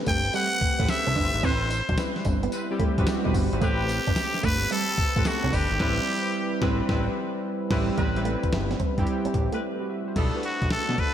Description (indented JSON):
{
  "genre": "R&B, new jack swing",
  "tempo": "110 BPM",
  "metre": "4/4",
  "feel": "swing 67% on 16ths",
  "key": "unclear",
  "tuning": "A4 = 441 Hz",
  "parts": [
    { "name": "warm analog keys", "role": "accompaniment", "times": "0.0-11.1 s", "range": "G3 to B5", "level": "-29 LUFS", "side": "equal", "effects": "chorus" },
    { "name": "trumpet with straight mute", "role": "melody", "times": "0.1-6.6, 10.4-11.1 s", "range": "F#4 to G5", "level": "-27 LUFS", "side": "equal", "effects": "slapback echo" },
    { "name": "electric guitar with an envelope filter", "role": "riff", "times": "0.1-9.6 s", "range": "G3 to D4", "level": "-33 LUFS", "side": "right 7 dB", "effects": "ensemble chorus, slapback echo" },
    { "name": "fat analog bass", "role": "bass", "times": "0.1-11.0 s", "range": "G1 to B2", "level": "-28 LUFS", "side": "equal", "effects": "none" },
    { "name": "dusty soul sampler-style drum kit", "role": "drums", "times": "0.1-11.1 s", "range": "crash cymbal, hi-hat, kick drum, snare drum, tambourine", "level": "-28 LUFS", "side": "equal", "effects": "none" },
    { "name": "warm horn section", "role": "stabs", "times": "0.8-10.4 s", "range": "B3 to B4", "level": "-36 LUFS", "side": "equal", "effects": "slapback echo, digital delay" }
  ],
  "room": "moderate lush hall reverb, RT60 2.1 s",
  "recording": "big arena sound",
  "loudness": "-23 LUFS",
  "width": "side -10 dB against mid",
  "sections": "0.0-8.0 A section; 8.0-10.2 B section",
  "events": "synth keys fill 2.8-3.6; band accent 5.8-8.0; break 9.6-10.2",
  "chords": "0.0 Am9; 1.4 Cmaj7; 3.6 Am9; 5.8 Cmaj7/A; 8.0 Cmaj7; 10.2 Bm7",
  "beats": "0.34 0.89 | 1.43 1.98 2.52 3.07 | 3.62 4.16 4.71 5.25 | 5.80 6.34 6.89 7.43 | 7.98 8.52 9.07 9.62 | 10.16 10.71"
}